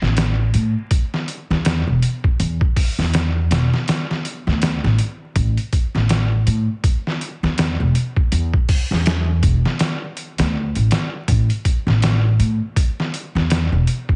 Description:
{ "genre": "trip hop", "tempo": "81 BPM", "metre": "4/4", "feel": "swing 59% on 16ths", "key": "unclear", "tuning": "A4 = 440 Hz", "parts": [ { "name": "upright bass", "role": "bass", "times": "0.0-13.9 s", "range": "E1 to A2", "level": "-20 LUFS", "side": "equal", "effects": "none" }, { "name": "trip hop sampler-style drum kit", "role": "drums", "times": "0.0-14.2 s", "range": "hi-hat, kick drum, snare drum", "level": "-22 LUFS", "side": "equal", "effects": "none" } ], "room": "little or no reverb", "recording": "heavily compressed radio sound, vinyl crackle, nothing above 10.8 kHz", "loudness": "-19 LUFS", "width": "mono", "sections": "0.0-14.2 A section", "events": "none", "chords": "none", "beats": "0.17 0.91 1.65 | 2.39 3.13 3.87 4.62 | 5.36 6.10 6.84 7.58 | 8.32 9.06 9.80 10.54 | 11.28 12.02 12.76 13.50" }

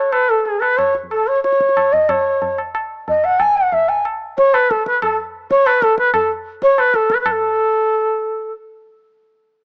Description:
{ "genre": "indian classical, Hindustani", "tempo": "186 BPM", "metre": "4/4", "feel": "straight", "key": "A raga yaman", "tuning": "A4 = 440 Hz", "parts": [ { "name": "bright reedy bansuri", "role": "melody", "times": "0.0-8.5 s", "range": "G#4 to G#5", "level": "-13 LUFS", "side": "equal", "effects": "cassette tape" }, { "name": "tabla", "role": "percussion", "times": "0.1-7.4 s", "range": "none", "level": "-24 LUFS", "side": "equal", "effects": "none" } ], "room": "light reverb, studio reverb", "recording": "home recording on cassette, small speaker sound", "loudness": "-13 LUFS", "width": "side -31 dB against mid", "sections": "0.0-7.3 A section; 7.3-9.6 B section", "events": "speeding up 0.0-9.6", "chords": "none", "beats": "0.12 0.45 | 0.78 1.11 1.44 1.77 | 2.09 2.42 2.75 3.07 | 3.40 3.72 4.05 4.37 | 4.70 5.02 5.34 5.66 | 5.98 6.30 6.62 6.94 | 7.26 7.58 7.89 8.21 | 8.53" }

